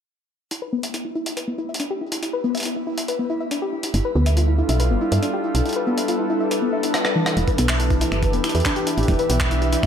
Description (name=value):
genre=IDM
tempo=140 BPM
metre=4/4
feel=straight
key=E phrygian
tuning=A4 = 440 Hz
part: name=soft round pluck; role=arpeggios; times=0.5-9.9 s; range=E3 to E5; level=-24 LUFS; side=left 2 dB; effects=chorus, ping-pong delay, shimmer reverb
part: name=jungle sampler-style drum kit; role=drums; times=0.5-9.9 s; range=finger snaps, handclaps, hi-hat, rim click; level=-26 LUFS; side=equal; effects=overdrive
part: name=warbly tape-like pad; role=sustained chords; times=3.9-9.9 s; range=E3 to E5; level=-24 LUFS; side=left 1 dB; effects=chorus, built-in reverb, shimmer reverb
part: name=woody FM bass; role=bass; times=3.9-9.9 s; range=E1 to G2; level=-20 LUFS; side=right 1 dB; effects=none
part: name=electronic kick drum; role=drums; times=7.5-9.9 s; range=none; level=-24 LUFS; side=right 1 dB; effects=overdrive
room=moderate plate reverb, RT60 2.2 s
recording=dreamy mix soaked in reverb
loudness=-19 LUFS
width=side -8 dB against mid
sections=0.5-7.4 A section; 7.4-9.9 B section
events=drum fill 6.9-7.4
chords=0.5 E5; 3.9 G7; 7.4 Em7